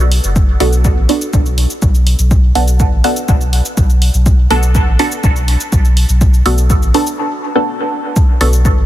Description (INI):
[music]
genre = dub techno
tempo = 123 BPM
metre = 4/4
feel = straight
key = B minor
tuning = A4 = 440 Hz
[part]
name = warm sub bass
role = bass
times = 0.0-8.9 s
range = F#1 to B1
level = -12 LUFS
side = equal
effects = sidechain pumping
[part]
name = electronic shaker and hi-hat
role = drums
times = 0.0-8.8 s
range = none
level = -23 LUFS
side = equal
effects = overdrive, studio reverb
[part]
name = electronic kick drum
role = drums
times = 0.4-8.8 s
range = none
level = -12 LUFS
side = equal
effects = studio reverb
[part]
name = filtered dub chord stab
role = stabs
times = 0.6-8.7 s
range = B3 to A4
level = -17 LUFS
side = right 1 dB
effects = phaser, sidechain pumping, dub echo
[sound]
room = little or no reverb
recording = dense, heavily limited modern master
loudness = -10 LUFS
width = side -14 dB against mid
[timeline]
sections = 0.0-8.2 A section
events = break 7.2-8.2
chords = 0.0 Bm7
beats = | 0.36 0.85 1.33 1.82 | 2.31 2.80 3.29 3.77 | 4.26 4.75 5.24 5.72 | 6.21 6.70 7.19 7.68 | 8.16 8.65